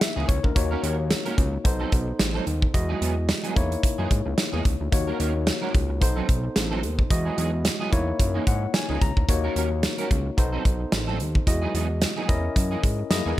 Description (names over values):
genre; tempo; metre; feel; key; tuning
early-eighties boogie funk; 110 BPM; 4/4; swing 56% on 16ths; C# dorian; A4 = 439 Hz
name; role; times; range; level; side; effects
barky tine electric piano; accompaniment; 0.0-13.4 s; G#3 to A#5; -29 LUFS; moving between left 8 dB and right 1 dB; overdrive, auto-pan
electric guitar at the edge of break-up; riff; 0.0-13.4 s; E3 to A#4; -33 LUFS; right 5 dB; ensemble chorus
modern studio drum kit; drums; 0.0-13.2 s; hi-hat, kick drum, snare drum; -23 LUFS; equal; gated reverb
fat analog bass; bass; 0.2-13.3 s; A1 to G#2; -27 LUFS; equal; none
room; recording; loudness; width
studio reverb; none; -21 LUFS; side -14 dB against mid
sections
0.0-13.4 A section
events
tine electric piano fill 8.2-9.3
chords
0.0 C#m69; 0.6 D#m7; 1.7 B7b9; 2.7 Emaj9; 3.6 C#m69/E; 4.9 D#m7; 6.0 B7b9; 7.1 Emaj9; 7.9 C#m69/E; 9.3 D#m7; 10.4 B7b9; 11.5 Emaj9; 12.3 C#m69/E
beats
0.01 | 0.56 1.11 1.65 2.20 | 2.74 3.29 3.83 4.38 | 4.92 5.47 6.01 6.56 | 7.11 7.65 8.20 8.74 | 9.29 9.83 10.38 10.92 | 11.47 12.02 12.56 13.11